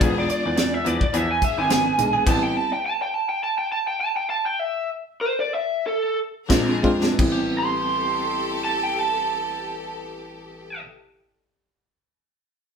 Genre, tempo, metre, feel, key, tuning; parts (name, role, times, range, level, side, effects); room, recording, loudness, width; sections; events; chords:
straight-eighth soul blues; 85-106 BPM; 4/4; swing 55% on 16ths; A minor; A4 = 442 Hz
lead guitar through a small cranked amp; melody; 0.0-10.8 s; G#4 to C6; -23 LUFS; right 2 dB; overdrive
reed electric piano; accompaniment; 0.0-2.7, 6.5-10.8 s; G3 to G#4; -25 LUFS; equal; fast tremolo
bright studio string section; sustained chords; 0.0-2.7, 6.5-10.8 s; D4 to B4; -32 LUFS; left 3 dB
direct-recorded clean electric guitar; stabs; 0.0-2.5, 6.5-11.0 s; E3 to G#4; -33 LUFS; left 5 dB
clear grand piano; bass; 0.0-2.5, 6.5-10.8 s; E1 to F2; -29 LUFS; equal
tight funk drum kit; drums; 0.0-2.4, 6.5-7.4 s; crash cymbal, hi-hat, kick drum, snare drum; -23 LUFS; equal
wet studio reverb, RT60 0.8 s; band playing live in one room; -20 LUFS; side -6 dB against mid
0.0-7.2 A section; 7.2-10.0 B section
lead electric guitar solo 0.0-7.2; slowing down 2.3-7.2; stop 2.3-6.5; drum fill 6.8-7.2
0.0 E7b9; 2.3 Am9; 6.5 Bb7; 7.2 Am9